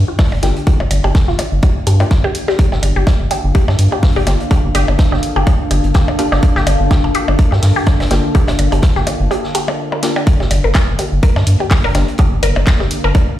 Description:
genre	minimal techno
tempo	125 BPM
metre	4/4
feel	swing 56% on 16ths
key	G minor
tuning	A4 = 440 Hz
part	rubbery square bass	bass	0.0-13.1 s	G1 to G2	-14 LUFS	equal	sidechain pumping
part	deep dark ambient pad	texture	0.0-13.4 s	D4 to A5	-22 LUFS	equal	chorus, built-in reverb, sidechain pumping
part	resonant blip pluck	riff	0.1-13.1 s	F4 to G5	-22 LUFS	left 1 dB	phaser, sidechain pumping, tape echo
part	electronic kick drum	drums	0.2-13.3 s	none	-11 LUFS	equal	none
part	vintage drum kit	drums	0.2-13.3 s	hi-hat, snare drum	-28 LUFS	equal	high-pass filter on hats, high-pass filter on snare, high-pass filter on room
part	percussion blips	percussion	0.2-13.3 s	none	-24 LUFS	left 1 dB	digital delay
part	filtered dub chord stab	stabs	0.4-12.0 s	Bb3 to G4	-22 LUFS	left 3 dB	chorus, digital delay
part	garage drum kit	drums	0.4-13.0 s	handclaps, hi-hat	-23 LUFS	equal	none
part	swarming drone	texture	11.2-13.4 s	D4	-32 LUFS	right 3 dB	built-in reverb, sidechain pumping
room	light reverb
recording	played on a big sound system in a bare room, stone room reverb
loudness	-11 LUFS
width	side -13 dB against mid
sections	0.0-13.4 A section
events	filter sweep on synth pluck 0.0-13.4; break 9.3-10.3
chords	0.0 Gm7

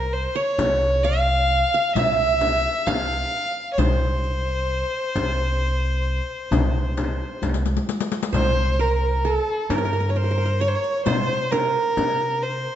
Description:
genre	Turkish makam ensemble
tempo	132 BPM (eighths)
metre	10/8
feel	straight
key	C makam hicaz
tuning	A4 = 441 Hz
part	rich violin	melody	0.0-12.8 s	A4-36c to F5	-23 LUFS	equal	none
part	qanun	second line	0.0-12.8 s	A4-40c to F5	-28 LUFS	right 7 dB	none
part	upright bass	bass	0.0-12.7 s	C2 to C3	-24 LUFS	equal	none
part	frame drum	percussion	0.6-12.2 s	none	-27 LUFS	left 3 dB	none
part	riq	percussion	0.6-12.2 s	none	-30 LUFS	left 5 dB	none
room	moderate recital hall reverb, RT60 1.7 s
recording	nothing above 7.9 kHz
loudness	-20 LUFS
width	side -10 dB against mid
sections	0.0-8.3 A section; 8.3-12.8 B section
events	drum fill 7.4-8.3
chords	none

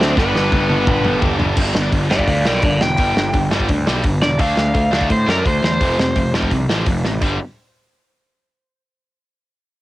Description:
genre	punk rock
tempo	170 BPM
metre	4/4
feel	straight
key	G major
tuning	A4 = 437 Hz
part	overdriven semi-hollow guitar	melody	0.0-6.3 s	B3 to G5	-20 LUFS	equal	analog delay
part	distorted electric guitar	riff	0.0-1.6 s	G2 to D4	-23 LUFS	left 1 dB	distortion, cassette tape
part	tight distorted guitar	riff	0.0-7.4 s	F2 to D4	-21 LUFS	equal	distortion, cassette tape
part	fuzz picked electric bass	bass	0.0-7.4 s	E1 to A2	-20 LUFS	equal	overdrive
part	loose indie drum kit	drums	0.0-7.3 s	crash cymbal, hi-hat, kick drum, snare drum, toms	-20 LUFS	equal	cassette tape
room	little or no reverb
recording	home recording on cassette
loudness	-14 LUFS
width	side -16 dB against mid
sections	0.0-1.6 A section; 1.6-7.2 B section; 7.2-8.6 C section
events	drum fill 0.2-1.6, 7.0; overdriven electric guitar solo 1.6-7.2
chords	0.2 G; 1.6 G5; 4.4 D5; 5.8 F; 7.2 G5

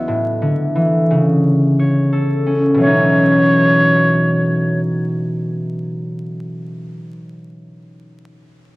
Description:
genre	hip hop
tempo	88 BPM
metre	4/4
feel	swing 54% on 16ths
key	C# minor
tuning	A4 = 441 Hz
part	concert harp	accompaniment	0.0-7.0 s	E2 to D#5	-15 LUFS	equal	high-pass filter, low-pass filter
part	breathy bright concert flute	melody	2.8-4.8 s	C#5	-15 LUFS	equal	high-pass filter, low-pass filter
room	small room ambience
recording	dry, gritty hardware recording, vinyl crackle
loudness	-13 LUFS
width	side -20 dB against mid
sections	0.0-2.8 A section; 2.8-5.5 B section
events	none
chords	0.1 Aadd11; 2.8 C#m11

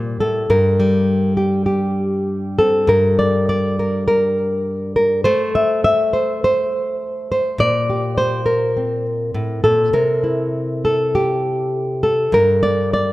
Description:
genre	folk, solo fingerstyle acoustic guitar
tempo	101 BPM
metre	4/4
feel	straight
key	G dorian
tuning	A4 = 438 Hz
part	nylon-string guitar	solo	0.0-13.1 s	G2 to E5	-15 LUFS	equal	none
room	moderate concert hall reverb, RT60 2.4 s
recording	none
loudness	-15 LUFS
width	side -17 dB against mid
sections	0.0-2.9 A section; 2.9-13.1 A section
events	none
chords	0.5 Gm; 2.9 N.C.; 7.6 Gmadd9/Bb; 9.9 C; 12.3 N.C.

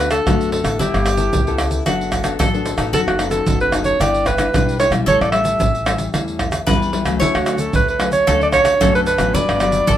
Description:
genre	samba and choro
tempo	112 BPM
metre	4/4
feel	straight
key	D major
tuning	A4 = 439 Hz
part	mellow alto saxophone	melody	0.0-10.0 s	E4 to E5	-18 LUFS	right 2 dB	none
part	bowl-back mandolin	second line	0.0-10.0 s	E4 to C#5	-26 LUFS	left 2 dB	none
part	nylon-string guitar	accompaniment	0.0-10.0 s	G2 to B4	-23 LUFS	left 5 dB	none
part	upright bass	bass	0.0-10.0 s	F#1 to F#2	-24 LUFS	equal	none
part	tube shaker, pandeiro, tamborim and surdo	percussion	0.1-10.0 s	none	-20 LUFS	right 2 dB	none
room	moderate studio reverb, RT60 0.5 s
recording	minimal, uncompressed stereo recording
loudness	-15 LUFS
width	side -11 dB against mid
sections	0.0-10.0 A section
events	none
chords	0.0 Bm7/D; 0.8 G69; 1.9 D6/F#; 2.9 B7/F#; 4.0 Em7/G; 5.1 A7; 7.2 Dmaj7; 8.3 Bm9/D; 9.3 Gmaj7#11

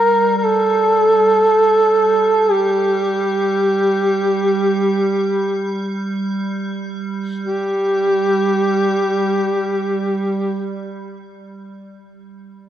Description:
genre	caucasian folk, Caucasian lament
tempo	free time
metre	none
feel	none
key	G minor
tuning	A4 = 440 Hz
part	mellow duduk	melody	0.0-10.7 s	G4 to Bb4	-15 LUFS	equal	none
part	icy glass pad	drone	0.0-10.7 s	G3	-23 LUFS	right 4 dB	chorus, built-in reverb
room	wet church reverb, RT60 2.5 s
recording	none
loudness	-15 LUFS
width	side -11 dB against mid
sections	0.0-7.5 A section; 7.5-12.0 B section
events	slowing down 0.0-7.5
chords	none

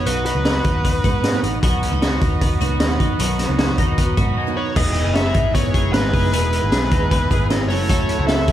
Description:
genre	jangly indie pop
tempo	153 BPM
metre	4/4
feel	straight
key	E major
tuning	A4 = 436 Hz
part	smooth overdriven lead guitar	melody	0.0-1.4, 4.6-8.5 s	B4 to E5	-24 LUFS	left 1 dB	plate reverb
part	combo organ	accompaniment	0.0-8.5 s	E4 to B5	-28 LUFS	right 4 dB	none
part	picked steel-string acoustic guitar	accompaniment	0.0-8.5 s	F#2 to E4	-27 LUFS	right 8 dB	none
part	twelve-string electric guitar	arpeggios	0.0-8.5 s	F#3 to A4	-27 LUFS	left 5 dB	analog chorus
part	vintage muted picked electric bass	bass	0.0-8.5 s	E1 to G#2	-22 LUFS	equal	none
part	raw garage drum kit	drums	0.1-8.5 s	crash cymbal, hi-hat, kick drum, snare drum	-20 LUFS	equal	none
part	string machine, violas	sustained chords	1.6-8.5 s	B2 to G#4	-29 LUFS	left 1 dB	ensemble chorus
room	light reverb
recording	dark, warm production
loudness	-16 LUFS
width	side -12 dB against mid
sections	0.0-4.8 A section; 4.8-8.5 B section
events	transistor combo organ fill 4.0-4.8; break 4.4-4.8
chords	0.0 B; 4.8 Emaj7; 7.7 F#m7

